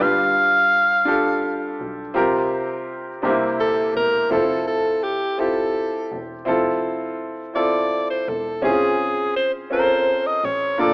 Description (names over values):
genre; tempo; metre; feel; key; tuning
slow gospel; 56 BPM (dotted quarters); 6/8; straight; F major; A4 = 440 Hz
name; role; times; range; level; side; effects
edgy alto saxophone; melody; 0.0-10.9 s; G4 to F5; -19 LUFS; equal; none
clear concert grand piano; accompaniment; 0.0-10.9 s; G2 to B4; -22 LUFS; equal; none
muted double bass; bass; 0.0-10.9 s; E1 to C2; -36 LUFS; equal; none
room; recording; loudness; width
light reverb, small room reverb; rough home demo mix, AM radio sound; -18 LUFS; side -29 dB against mid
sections
0.0-6.5 A section; 6.5-10.9 B section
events
none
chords
0.0 G7; 2.2 C7sus4; 3.2 C7; 4.3 Fmaj7; 8.6 Dbmaj7/F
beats
1.07 | 2.15 3.23 | 4.31 5.39 | 6.47 7.55 | 8.63 9.71 | 10.79